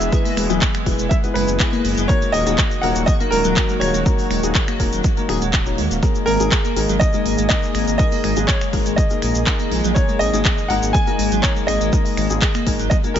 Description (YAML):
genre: progressive house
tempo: 122 BPM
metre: 4/4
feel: straight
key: G# minor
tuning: A4 = 440 Hz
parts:
  - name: clear concert grand piano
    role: melody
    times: 0.0-13.2 s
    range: A#4 to G#5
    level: -23 LUFS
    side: equal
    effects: sidechain pumping, ping-pong delay
  - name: lush unison pad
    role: sustained chords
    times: 0.0-13.2 s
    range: D#3 to G#4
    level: -28 LUFS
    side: equal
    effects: chorus, sidechain pumping
  - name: felt-muted upright piano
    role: stabs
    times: 0.0-13.2 s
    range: F#3 to C#5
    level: -25 LUFS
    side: left 7 dB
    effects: sidechain pumping, ping-pong delay
  - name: dark detuned saw bass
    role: bass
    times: 0.0-13.2 s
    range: D#1 to D#2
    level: -23 LUFS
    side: equal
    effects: sidechain pumping
  - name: house drum kit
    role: drums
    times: 0.0-13.2 s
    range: finger snaps, handclaps, hi-hat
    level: -25 LUFS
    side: equal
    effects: none
  - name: egg shaker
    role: percussion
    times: 0.0-13.1 s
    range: none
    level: -32 LUFS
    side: left 2 dB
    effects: none
  - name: glassy wavetable pluck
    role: arpeggios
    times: 0.1-13.2 s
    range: D#3 to G#4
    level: -25 LUFS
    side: right 1 dB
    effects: chorus, sidechain pumping, ping-pong delay
  - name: electronic kick drum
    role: drums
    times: 0.1-13.0 s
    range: none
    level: -19 LUFS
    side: equal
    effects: overdrive
room: little or no reverb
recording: nothing above 7.6 kHz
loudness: -16 LUFS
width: side -9 dB against mid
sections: 0.0-13.2 A section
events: none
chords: 0.0 E; 2.1 D#m; 6.0 G#sus2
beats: | 0.12 0.62 1.11 1.60 | 2.09 2.58 3.08 3.57 | 4.06 4.55 5.04 5.53 | 6.03 6.52 7.01 7.50 | 7.99 8.48 8.98 9.47 | 9.96 10.45 10.94 11.44 | 11.93 12.42 12.91